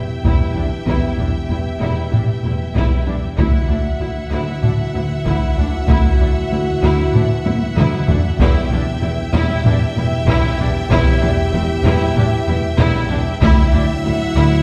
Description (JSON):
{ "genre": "cinematic, epic orchestral film score", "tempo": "96 BPM", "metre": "4/4", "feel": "straight", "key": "E minor", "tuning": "A4 = 439 Hz", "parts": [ { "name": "clear symphonic violin section", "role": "melody", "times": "0.0-14.6 s", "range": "F#5 to G5", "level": "-35 LUFS", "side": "equal", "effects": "none" }, { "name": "warm symphonic violin section", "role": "second line", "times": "0.0-14.6 s", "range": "E5", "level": "-30 LUFS", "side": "equal", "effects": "none" }, { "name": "mellow French horn section", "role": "sustained chords", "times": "0.0-14.6 s", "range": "E3 to G4", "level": "-27 LUFS", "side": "equal", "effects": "none" }, { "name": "rich symphonic cello section", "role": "bass", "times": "0.2-14.4 s", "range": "D2 to E2", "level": "-24 LUFS", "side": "equal", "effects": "none" }, { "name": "warm symphonic double bass section", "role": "bass", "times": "0.2-14.4 s", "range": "E1 to D2", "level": "-22 LUFS", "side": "equal", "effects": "none" }, { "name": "taiko ensemble", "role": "drums", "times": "0.2-14.0 s", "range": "none", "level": "-21 LUFS", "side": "equal", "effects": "none" }, { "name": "rich studio viola section", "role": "accompaniment", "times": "0.3-14.6 s", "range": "D4 to E4", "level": "-28 LUFS", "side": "equal", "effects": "none" } ], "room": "wet scoring stage reverb, RT60 1.6 s", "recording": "heard from further back in the room", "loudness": "-17 LUFS", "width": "mono", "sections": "0.0-14.6 A section", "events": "drum fill 7.5-8.4", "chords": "0.0 Em; 3.4 Dadd9; 8.4 Em; 13.4 Dadd9" }